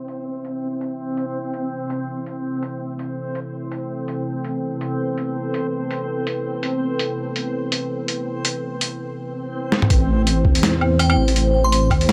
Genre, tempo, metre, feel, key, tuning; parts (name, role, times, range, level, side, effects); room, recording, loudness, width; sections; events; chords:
half-time drum and bass; 165 BPM; 4/4; swing 56% on 16ths, half-time; A minor; A4 = 439 Hz
dark analog pad; sustained chords; 0.0-12.1 s; A3 to E5; -28 LUFS; equal; chorus, phaser, sidechain pumping
backwards swelling texture; texture; 0.0-9.2 s; C4; -31 LUFS; equal; built-in reverb
boom bap sampler-style drum kit; drums; 0.1-12.1 s; hi-hat, snare drum, toms, woodblock; -24 LUFS; equal
dark detuned saw bass; bass; 9.9-12.1 s; A1 to E2; -21 LUFS; equal
electronic kick drum; drums; 9.9-12.0 s; -20 LUFS; equal
glassy synth bell; melody; 11.0-11.8 s; G5 to C6; -27 LUFS; equal; chorus, phaser, digital delay
light reverb; low-pass filter; -22 LUFS; mono
0.0-9.9 A section; 9.9-12.1 B section
filter sweep 0.0-9.9; drum fill 9.7; drop 9.9-12.1
0.0 Am